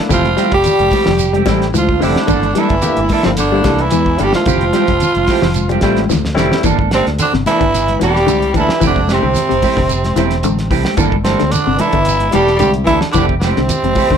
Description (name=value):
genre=afrobeat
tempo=110 BPM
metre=4/4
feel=swing 54% on 16ths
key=G dorian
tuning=A4 = 440 Hz
part: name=barky tine electric piano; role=accompaniment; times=0.0-6.6 s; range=G3 to G4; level=-21 LUFS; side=left 3 dB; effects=overdrive
part: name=raspy tenor saxophone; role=melody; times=0.1-14.2 s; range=C4 to G4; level=-17 LUFS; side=right 2 dB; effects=tape echo
part: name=clear trombone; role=second line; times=0.1-14.2 s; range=C3 to G3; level=-23 LUFS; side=right 5 dB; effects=none
part: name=raspy baritone saxophone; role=second line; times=0.1-14.2 s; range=C3 to G3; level=-23 LUFS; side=left 2 dB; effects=none
part: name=semi-hollow electric guitar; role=arpeggios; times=0.1-14.2 s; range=C3 to G3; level=-20 LUFS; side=left 7 dB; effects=wide subtle chorus
part: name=clean electric guitar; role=stabs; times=0.1-14.2 s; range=E3 to A4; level=-20 LUFS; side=right 6 dB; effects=lush chorus
part: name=fingered electric bass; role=bass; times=0.1-14.2 s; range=E1 to E2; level=-19 LUFS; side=equal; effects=none
part: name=cloth-damped thuddy drum kit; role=drums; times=0.1-14.2 s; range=hi-hat, kick drum, snare drum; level=-21 LUFS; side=equal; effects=none
part: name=congas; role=percussion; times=0.1-14.2 s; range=none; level=-22 LUFS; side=left 2 dB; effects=none
part: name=shekere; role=percussion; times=0.1-14.1 s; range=none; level=-25 LUFS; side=right 6 dB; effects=none
room=light reverb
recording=none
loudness=-11 LUFS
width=side -7 dB against mid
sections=0.0-6.6 A section; 6.6-14.2 B section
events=drum fill 5.6-6.6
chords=0.1 Fmaj9; 2.3 Gm69; 4.5 Fmaj9; 6.6 Gm69; 8.8 Fmaj9; 11.0 Gm69; 13.2 Fmaj9